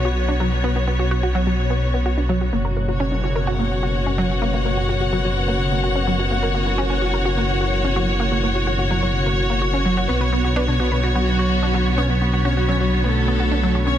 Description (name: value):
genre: techno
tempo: 127 BPM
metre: 4/4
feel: straight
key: B minor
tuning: A4 = 440 Hz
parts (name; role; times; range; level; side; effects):
- dark analog pad; sustained chords; 0.0-14.0 s; B3 to C#5; -29 LUFS; equal; chorus
- analog pluck; arpeggios; 0.0-13.9 s; F#3 to B4; -25 LUFS; right 1 dB; chorus, dub echo
- swelling detuned saw bass; bass; 0.0-14.0 s; F#1 to B1; -22 LUFS; equal; none
- analog drone; drone; 0.0-14.0 s; B2 to B3; -30 LUFS; right 1 dB; chorus
- rich symphonic string section; texture; 0.0-14.0 s; B3 to F#5; -24 LUFS; left 2 dB; none
- expressive synth lead; melody; 10.1-14.0 s; B2 to C#4; -23 LUFS; right 1 dB; chorus, digital delay
- dark symphonic violin section; second line; 10.1-14.0 s; B3 to C#5; -28 LUFS; left 2 dB; dub echo
room: light reverb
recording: dense, heavily limited modern master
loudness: -18 LUFS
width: side -11 dB against mid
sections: 0.0-14.0 A section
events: filter sweep on synth arpeggio sound 0.0-14.0; filter sweep on analog synth pad 0.0-14.0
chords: 0.0 Bmadd9; 2.5 F#; 10.1 Bmadd9